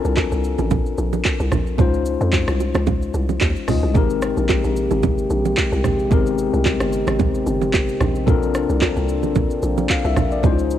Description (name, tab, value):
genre	amapiano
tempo	111 BPM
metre	4/4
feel	swing 55% on 16ths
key	unclear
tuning	A4 = 442 Hz
part	tine electric piano	accompaniment	0.0-10.8 s	Ab3 to F5	-23 LUFS	left 9 dB	fast stereo tremolo
part	hollow log drum bass	bass	0.0-10.8 s	G1 to F2	-22 LUFS	equal	none
part	deep house drum kit	drums	0.0-10.8 s	handclaps, hi-hat, kick drum, rim click, shaker	-22 LUFS	equal	cassette tape
part	bongos and congas	percussion	0.2-10.6 s	none	-23 LUFS	right 7 dB	none
part	dark brass ensemble	sustained chords	4.0-10.8 s	C3 to C5	-24 LUFS	right 1 dB	sidechain pumping
room	light reverb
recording	home recording on cassette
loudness	-17 LUFS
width	side -11 dB against mid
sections	0.0-10.8 A section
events	none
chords	0.0 Bbmaj9; 1.8 Dbmaj9; 4.0 Abmaj9; 8.3 Bbmaj9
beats	0.17 0.71 1.25 | 1.79 2.33 2.87 3.41 | 3.95 4.49 5.03 5.57 | 6.11 6.66 7.20 7.74 | 8.28 8.82 9.36 9.90 | 10.44